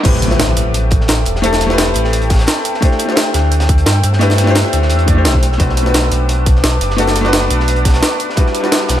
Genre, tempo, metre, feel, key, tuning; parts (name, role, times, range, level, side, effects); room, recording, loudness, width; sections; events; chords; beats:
liquid drum and bass; 173 BPM; 4/4; straight; A dorian; A4 = 445 Hz
clear baby grand piano; accompaniment; 0.0-9.0 s; G3 to D5; -17 LUFS; left 1 dB; ping-pong delay
shimmering ambient pad; sustained chords; 0.0-9.0 s; G3 to E6; -22 LUFS; equal; chorus, built-in reverb, sidechain pumping
sub bass with octave; bass; 0.0-9.0 s; E1 to G2; -15 LUFS; equal
electronic kick drum; drums; 0.0-8.4 s; -13 LUFS; equal
noise sweep and impact; sound effects; 0.0-1.4 s; -22 LUFS; right 1 dB
crunchy breakbeat drum kit; drums; 0.1-9.0 s; hi-hat, snare drum; -25 LUFS; equal; high-pass filter on hats, high-pass filter on snare, high-pass filter on room
jungle sampler-style drum kit; drums; 0.1-9.0 s; crash cymbal, hi-hat, snare drum; -18 LUFS; right 1 dB; low-pass filter on snare, low-pass filter on hats, low-pass filter on cymbals, low-pass filter on room
light reverb; -11 LUFS; side -11 dB against mid
0.0-9.0 A section
drop 0.0-9.0; impact 0.0-1.4
0.0 Am7; 2.8 D9sus4; 5.4 Bm7; 8.4 Em9
| 0.05 0.40 0.74 1.09 | 1.44 1.78 2.13 2.48 | 2.82 3.17 3.52 3.86 | 4.21 4.56 4.90 5.25 | 5.60 5.94 6.29 6.64 | 6.99 7.33 7.68 8.03 | 8.37 8.72